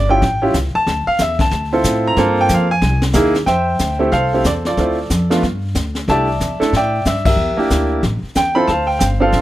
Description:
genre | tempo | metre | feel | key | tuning
jazz piano trio | 184 BPM | 4/4 | swing 61% on 8ths | unclear | A4 = 438 Hz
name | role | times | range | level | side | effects
clear baby grand piano | melody | 0.0-9.4 s | A3 to B5 | -16 LUFS | right 1 dB | none
upright bass | bass | 0.0-9.4 s | G1 to A2 | -19 LUFS | equal | none
jazz brush drum kit | drums | 0.2-9.4 s | brushed snare drum, crash cymbal, hi-hat, kick drum, snare drum | -21 LUFS | left 1 dB | none
room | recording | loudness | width
light reverb | none | -14 LUFS | side -14 dB against mid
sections
0.0-3.5 A section; 3.5-9.4 B section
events
grand piano solo 0.0-3.5; band accent 7.2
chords
0.2 A7; 0.9 Dm9; 2.2 Gm11; 2.8 C7alt; 3.5 Fmaj9; 4.8 Dm7; 5.4 G5; 6.1 C69; 7.4 Em7b5; 8.0 A5; 8.7 Dm7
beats
0.23 0.55 | 0.88 1.20 1.52 1.85 | 2.17 2.50 2.83 3.15 | 3.48 3.80 4.13 4.45 | 4.78 5.10 5.43 5.75 | 6.08 6.41 6.73 7.06 | 7.38 7.71 8.03 8.36 | 8.68 9.01 9.34

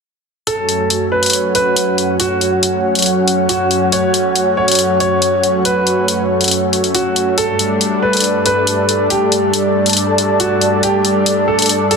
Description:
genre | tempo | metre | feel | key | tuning
heavy wobble dubstep | 139 BPM | 4/4 | half-time | F# phrygian | A4 = 441 Hz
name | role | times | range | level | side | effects
clear concert grand piano | melody | 0.5-12.0 s | F#4 to C#5 | -18 LUFS | right 1 dB | dub echo
lush unison pad | sustained chords | 0.5-12.0 s | F#2 to D4 | -18 LUFS | equal | chorus
electronic hi-hat | drums | 0.5-12.0 s | none | -16 LUFS | left 3 dB | none
airy breathy pad | texture | 0.5-12.0 s | F#4 to A5 | -18 LUFS | equal | chorus
room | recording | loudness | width
moderate digital room reverb, RT60 1.2 s, digital ambience | dense, heavily limited modern master | -12 LUFS | side -5 dB against mid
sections
0.5-12.0 A section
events
none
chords
0.5 F#m; 7.4 Gsus2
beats
| 0.47 0.90 1.33 1.76 | 2.20 2.63 3.06 3.49 | 3.92 4.36 4.79 5.22 | 5.65 6.08 6.51 6.95 | 7.38 7.81 8.24 8.67 | 9.10 9.54 9.97 10.40 | 10.83 11.26 11.69

